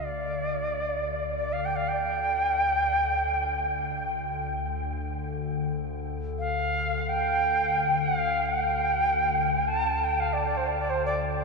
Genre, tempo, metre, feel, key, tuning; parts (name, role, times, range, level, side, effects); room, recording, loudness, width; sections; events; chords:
world meditative, free-time meditation music; free time; D minor pentatonic; A4 = 440 Hz
Native American-style cedar flute; melody; 0.0-11.4 s; C5 to A5; -26 LUFS; right 1 dB; diffuse ambient delay
warbly tape-like pad; drone; 0.0-11.4 s; D2 to D3; -32 LUFS; left 2 dB; chorus, built-in reverb, phaser
wet huge ambient reverb, RT60 7.9 s; in a vast, echoing space, studio ambience; -25 LUFS; side -3 dB against mid
0.0-11.4 A section